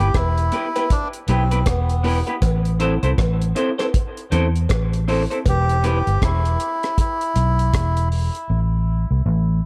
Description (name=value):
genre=dub reggae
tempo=79 BPM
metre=4/4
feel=swing 61% on 16ths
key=unclear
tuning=A4 = 440 Hz
part: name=melodica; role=melody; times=0.0-8.1 s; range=B3 to G4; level=-27 LUFS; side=equal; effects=dub echo
part: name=semi-hollow electric guitar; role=accompaniment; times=0.0-6.0 s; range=B3 to C5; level=-27 LUFS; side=equal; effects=subtle chorus, dub echo
part: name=vintage muted fingered electric bass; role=bass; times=0.0-9.6 s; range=E1 to E2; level=-21 LUFS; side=equal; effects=none
part: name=deep reggae drum kit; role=drums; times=0.1-8.5 s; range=hi-hat, kick drum, rim click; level=-25 LUFS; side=equal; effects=none
part: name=cowbell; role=percussion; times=0.1-5.7 s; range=none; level=-34 LUFS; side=equal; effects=dub echo
room=light reverb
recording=none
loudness=-20 LUFS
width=mono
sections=0.0-9.7 A section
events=part muted 5.5-9.7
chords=0.0 Em; 2.4 Am; 5.5 Em; 8.5 N.C.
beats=0.15 0.91 1.67 | 2.42 3.18 3.94 4.70 | 5.46 6.22 6.98 7.74 | 8.49 9.25